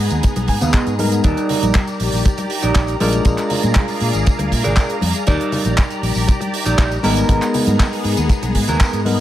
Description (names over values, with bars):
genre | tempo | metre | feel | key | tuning
nu-disco, nu disco | 119 BPM | 4/4 | straight | Eb major | A4 = 437 Hz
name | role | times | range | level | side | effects
barky tine electric piano | accompaniment | 0.0-9.2 s | G3 to D5 | -23 LUFS | moving between left 6 dB and right 4 dB | auto-pan, sidechain pumping, low-pass filter, dub echo
lush unison pad | sustained chords | 0.0-9.2 s | Cb4 to Bb5 | -25 LUFS | equal | chorus, phaser, sidechain pumping
fingered electric bass | bass | 0.0-9.2 s | Ab1 to Bb2 | -20 LUFS | equal | sidechain pumping
damped 70s drum kit | drums | 0.1-9.2 s | handclaps, hi-hat | -24 LUFS | right 2 dB | none
tambourine and congas | percussion | 0.1-9.2 s | none | -27 LUFS | left 3 dB | none
clean electric guitar | riff | 0.2-9.0 s | Cb4 to Ab5 | -24 LUFS | right 3 dB | lush chorus, low-pass filter, dub echo
kick drum | drums | 0.2-8.9 s | none | -15 LUFS | equal | none
room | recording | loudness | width
little or no reverb | none | -14 LUFS | side -13 dB against mid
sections
0.0-9.2 A section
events
filter sweep on clean electric guitar 0.0-9.2; clean electric guitar fill 0.2-1.2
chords
0.0 Abmadd9; 1.2 Ebmaj7; 3.0 Bb7; 5.3 Ebmaj7; 7.0 Abmadd9